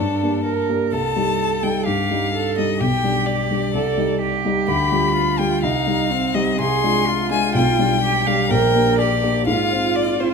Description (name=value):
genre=quick classical-period movement for piano trio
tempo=126 BPM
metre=4/4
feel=rubato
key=unclear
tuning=A4 = 443 Hz
part: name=rich violin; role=melody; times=0.0-10.3 s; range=A4 to C6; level=-22 LUFS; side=left 8 dB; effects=none
part: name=rich cello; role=second line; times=0.0-10.3 s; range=C4 to Bb4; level=-22 LUFS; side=right 9 dB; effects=none
part: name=warm concert grand piano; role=accompaniment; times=0.0-10.3 s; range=Bb1 to C5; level=-20 LUFS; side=left 1 dB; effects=none
room=moderate recital hall reverb, RT60 1.4 s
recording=close, detailed microphones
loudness=-17 LUFS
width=side -5 dB against mid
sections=0.0-10.3 A section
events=none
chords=0.0 Gm; 0.9 Cm; 2.8 G/B; 3.7 Cm; 4.7 G7/D; 5.6 Cm; 6.6 Dm7b5/C; 7.6 G/B; 8.5 Gm/Bb; 9.5 Fm/Ab